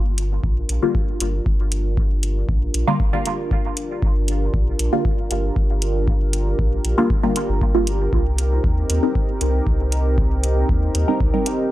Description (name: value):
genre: dub techno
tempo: 117 BPM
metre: 4/4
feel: straight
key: G minor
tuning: A4 = 440 Hz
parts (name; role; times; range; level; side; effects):
- dark analog pad; sustained chords; 0.3-11.7 s; C4 to Bb4; -26 LUFS; right 1 dB; chorus, vintage 12-bit sampler grit, sidechain pumping
- soft dub sub bass; bass; 0.0-11.3 s; G1 to Eb2; -21 LUFS; equal; sidechain pumping
- electronic hi-hat; drums; 0.2-11.6 s; none; -27 LUFS; right 1 dB; none
- electronic kick drum; drums; 0.4-11.3 s; none; -21 LUFS; equal; none
- filtered dub chord stab; stabs; 0.8-11.5 s; D3 to Bb4; -23 LUFS; equal; phaser, sidechain pumping, dub echo
room: little or no reverb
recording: dry, gritty hardware recording, transformer saturation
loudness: -18 LUFS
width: side -15 dB against mid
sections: 0.0-11.7 A section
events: none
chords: 0.0 Gm7; 8.1 Cm7